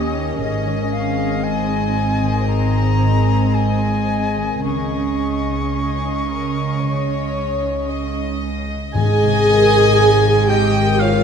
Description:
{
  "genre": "cinematic, emotional film score for orchestra",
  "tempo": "57 BPM",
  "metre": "4/4",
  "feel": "rubato",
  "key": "Ab major",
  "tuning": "A4 = 442 Hz",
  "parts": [
    { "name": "warm symphonic violin section", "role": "melody", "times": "0.0-11.2 s", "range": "Eb5 to Ab5", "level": "-27 LUFS", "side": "left 4 dB", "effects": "none" },
    { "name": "bright concert flute", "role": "second line", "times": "0.0-8.4 s", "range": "Eb5 to Eb6", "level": "-26 LUFS", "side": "left 4 dB", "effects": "none" },
    { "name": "warm symphonic violin section", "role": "second line", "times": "0.0-11.2 s", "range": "G4 to Eb5", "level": "-27 LUFS", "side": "left 4 dB", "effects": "none" },
    { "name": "dark symphonic viola section", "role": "accompaniment", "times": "0.0-11.2 s", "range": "C4 to Ab4", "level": "-21 LUFS", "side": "right 2 dB", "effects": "none" },
    { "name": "concert harp", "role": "arpeggios", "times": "0.0-11.2 s", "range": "Ab2 to C6", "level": "-25 LUFS", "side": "left 9 dB", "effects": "none" },
    { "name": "rich symphonic cello section", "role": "bass", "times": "0.0-11.2 s", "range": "Eb2 to Db3", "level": "-22 LUFS", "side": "right 2 dB", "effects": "none" },
    { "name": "rich symphonic double bass section", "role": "bass", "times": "0.0-11.2 s", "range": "Ab1 to Eb2", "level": "-23 LUFS", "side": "right 3 dB", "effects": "none" },
    { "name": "warm oboe", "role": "second line", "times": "8.9-11.2 s", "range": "F5 to Ab5", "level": "-23 LUFS", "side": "right 3 dB", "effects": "none" },
    { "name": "timpani", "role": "percussion", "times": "8.9-10.5 s", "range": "Ab2", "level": "-21 LUFS", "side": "left 3 dB", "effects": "none" }
  ],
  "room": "moderate scoring stage reverb, RT60 1.5 s",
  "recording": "dark, warm production",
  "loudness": "-15 LUFS",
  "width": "side -7 dB against mid",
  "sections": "0.0-8.9 A section; 8.9-11.2 B section",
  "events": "none",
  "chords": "0.4 Ab; 4.6 Dbsus2; 8.9 Abadd9",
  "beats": "| 0.41 1.44 2.48 3.54 | 4.64 5.74 6.81 7.88 | 8.94 9.98 11.01"
}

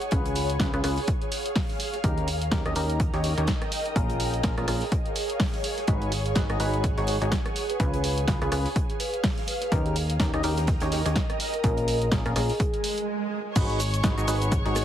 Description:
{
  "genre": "piano house",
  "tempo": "125 BPM",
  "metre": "4/4",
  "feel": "swing 57% on 16ths",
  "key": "G# dorian",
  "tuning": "A4 = 440 Hz",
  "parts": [
    { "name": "punchy analog drum machine", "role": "drums", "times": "0.0-14.8 s", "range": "crash cymbal, hi-hat, rim click, shaker, snare drum", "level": "-31 LUFS", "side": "right 1 dB", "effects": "none" },
    { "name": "ethereal airy pad", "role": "texture", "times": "0.0-14.8 s", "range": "G#4 to G5", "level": "-33 LUFS", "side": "right 2 dB", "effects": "ensemble chorus, built-in reverb, sidechain pumping" },
    { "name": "percussive organ stab", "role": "riff", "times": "0.1-14.8 s", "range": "A#2 to D#5", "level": "-30 LUFS", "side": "left 1 dB", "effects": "analog chorus, sidechain pumping, digital delay" },
    { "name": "plucky analog bass", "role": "bass", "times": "0.1-14.8 s", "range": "G#1 to D#2", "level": "-28 LUFS", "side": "equal", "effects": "tube saturation, sidechain pumping" },
    { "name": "electronic kick drum", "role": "drums", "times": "0.1-14.6 s", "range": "none", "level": "-27 LUFS", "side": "equal", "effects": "none" },
    { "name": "warm soul drum kit", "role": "drums", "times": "0.1-14.8 s", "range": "hi-hat, snare drum", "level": "-42 LUFS", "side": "right 2 dB", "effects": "none" },
    { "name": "vibraphone with soft mallets", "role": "melody", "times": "7.7-13.0 s", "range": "G#4 to B4", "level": "-32 LUFS", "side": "left 1 dB", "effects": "digital delay" },
    { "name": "swell", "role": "sound effects", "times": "12.7-13.6 s", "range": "none", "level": "-31 LUFS", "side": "right 5 dB", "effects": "none" },
    { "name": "rich studio violin section", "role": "sustained chords", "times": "13.6-14.8 s", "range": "C#5 to C#6", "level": "-33 LUFS", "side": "left 1 dB", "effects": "sidechain pumping" }
  ],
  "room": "light reverb",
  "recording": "heavily compressed radio sound, multiband compression",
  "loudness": "-23 LUFS",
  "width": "side -10 dB against mid",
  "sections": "0.0-13.6 A section; 13.6-14.8 B section",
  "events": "swell 12.7-13.6; stop 13.1-13.6; drop 13.6-14.8",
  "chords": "0.1 C#7; 2.0 D#7; 4.0 A#m7; 5.9 G#m7; 7.8 C#7; 9.7 D#7; 11.6 A#m7; 13.6 G#m7",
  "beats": "| 0.12 0.60 1.08 1.56 | 2.04 2.52 3.00 3.48 | 3.96 4.44 4.92 5.40 | 5.88 6.36 6.84 7.32 | 7.80 8.28 8.76 9.24 | 9.72 10.20 10.68 11.16 | 11.64 12.12 12.60 13.08 | 13.56 14.04 14.52"
}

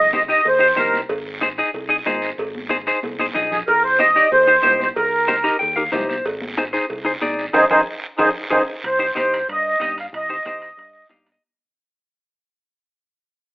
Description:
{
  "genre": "latin, cumbia",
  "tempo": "186 BPM",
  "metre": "4/4",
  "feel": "straight",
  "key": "C minor",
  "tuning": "A4 = 440 Hz",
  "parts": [
    { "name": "accordion", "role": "melody", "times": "0.0-1.0, 3.5-11.1 s", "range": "Eb4 to F5", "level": "-15 LUFS", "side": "right 1 dB", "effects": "light tremolo tuning" },
    { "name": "fingered electric bass", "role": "bass", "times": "0.0-11.4 s", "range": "Ab1 to G2", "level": "-37 LUFS", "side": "equal", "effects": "none" },
    { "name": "clean electric guitar", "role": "accompaniment", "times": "0.1-11.4 s", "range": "Eb4 to Bb5", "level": "-21 LUFS", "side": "left 1 dB", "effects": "none" },
    { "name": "congas", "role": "percussion", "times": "0.1-11.4 s", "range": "none", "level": "-34 LUFS", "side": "left 1 dB", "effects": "none" },
    { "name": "guiro", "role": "percussion", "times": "0.1-11.4 s", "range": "none", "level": "-33 LUFS", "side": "right 2 dB", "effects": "none" },
    { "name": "cowbell and timbales", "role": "percussion", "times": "0.5-11.4 s", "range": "none", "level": "-28 LUFS", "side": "right 1 dB", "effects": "none" }
  ],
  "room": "moderate studio reverb, RT60 0.8 s",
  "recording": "telephone sound",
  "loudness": "-16 LUFS",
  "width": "side -22 dB against mid",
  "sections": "0.0-8.8 A section; 8.8-11.4 B section",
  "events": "drum fill 3.0-3.7, 7.9-8.8; clean electric guitar fill 5.3-6.3, 10.9-11.4; band accent 7.5-8.8; fade-out 8.8-11.4",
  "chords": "0.0 Cm7; 1.1 Ab; 3.7 Cm7; 6.3 Ab; 8.8 Cm",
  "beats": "0.13 0.46 0.78 | 1.10 1.42 1.74 2.07 | 2.39 2.71 3.03 3.35 | 3.68 4.00 4.32 4.64 | 4.97 5.29 5.61 5.93 | 6.26 6.58 6.90 7.22 | 7.55 7.87 8.19 8.51 | 8.84 9.16 9.48 9.80 | 10.13 10.45 10.77 11.10"
}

